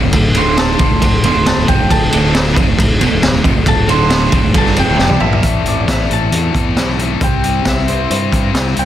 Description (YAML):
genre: quiet-loud alternative rock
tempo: 136 BPM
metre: 4/4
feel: straight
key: D minor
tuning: A4 = 442 Hz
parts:
  - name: overdriven semi-hollow guitar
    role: riff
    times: 0.0-5.4 s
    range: D2 to Bb3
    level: -18 LUFS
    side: right 9 dB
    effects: none
  - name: scooped high-gain guitar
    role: riff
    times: 0.0-8.9 s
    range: D2 to C4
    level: -20 LUFS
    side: left 9 dB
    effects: distortion
  - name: fuzz fingered electric bass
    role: bass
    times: 0.0-8.9 s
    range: D1 to G2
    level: -18 LUFS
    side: equal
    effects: overdrive
  - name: raw garage drum kit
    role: drums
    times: 0.1-8.9 s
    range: hi-hat, kick drum, ride cymbal, snare drum, toms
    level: -14 LUFS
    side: equal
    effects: none
  - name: concert harp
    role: melody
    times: 0.4-8.9 s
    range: C5 to C6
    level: -19 LUFS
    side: right 1 dB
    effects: none
  - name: electric guitar through a small old amp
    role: arpeggios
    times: 5.4-8.9 s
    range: A2 to C5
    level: -22 LUFS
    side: equal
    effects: none
room: light reverb, small room ambience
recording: dense, heavily limited modern master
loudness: -11 LUFS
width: side -11 dB against mid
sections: 0.0-5.4 A section; 5.4-8.9 B section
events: harp solo 0.0-5.4; drum fill 5.0-5.4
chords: 0.0 Dm; 5.4 Am; 7.2 C